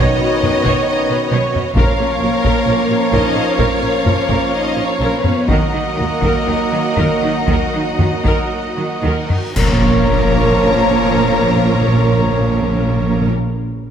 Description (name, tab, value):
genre	cinematic, epic orchestral film score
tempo	57-68 BPM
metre	4/4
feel	straight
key	Bb phrygian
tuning	A4 = 439 Hz
part	clear symphonic violin section	melody	0.0-13.3 s	Bb4 to Bb5	-26 LUFS	left 5 dB	none
part	rich symphonic violin section	second line	0.0-13.3 s	Bb4 to Gb5	-23 LUFS	left 2 dB	none
part	warm symphonic viola section	accompaniment	0.0-13.3 s	Db4 to C#5	-24 LUFS	right 1 dB	none
part	brilliant trombone section	sustained chords	0.0-13.3 s	D#3 to B3	-24 LUFS	right 4 dB	none
part	mellow French horn section	sustained chords	0.0-13.3 s	Bb3 to D#4	-24 LUFS	left 2 dB	none
part	rich symphonic string section	sustained chords	0.0-13.3 s	C#4 to F5	-24 LUFS	equal	none
part	mellow trumpet section	stabs	0.0-13.3 s	C#5 to Eb5	-23 LUFS	right 1 dB	none
part	rich studio double bass section	bass	0.0-13.3 s	Bb1 to Eb2	-22 LUFS	right 3 dB	none
part	rich symphonic cello section	bass	0.0-13.3 s	Bb2 to Eb3	-22 LUFS	right 3 dB	none
part	taiko ensemble	drums	0.4-9.8 s	none	-20 LUFS	equal	none
part	timpani	percussion	1.8-3.1, 9.6-13.3 s	Bb2	-20 LUFS	left 1 dB	none
part	cymbal swell, clash cymbals and concert bass drum	percussion	5.5-11.6 s	none	-22 LUFS	left 1 dB	none
part	reverse cymbal and impact	sound effects	9.3-13.3 s	none	-28 LUFS	equal	none
room	moderate scoring stage reverb, RT60 1.7 s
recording	none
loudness	-13 LUFS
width	side -8 dB against mid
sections	0.0-9.6 A section; 9.6-13.8 B section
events	slowing down 0.0-9.6; reverse cymbal 9.3; band accent 9.6-10.6; impact 9.6-13.8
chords	0.0 Badd9; 1.8 Bbm; 5.5 Ebm; 9.6 Bbm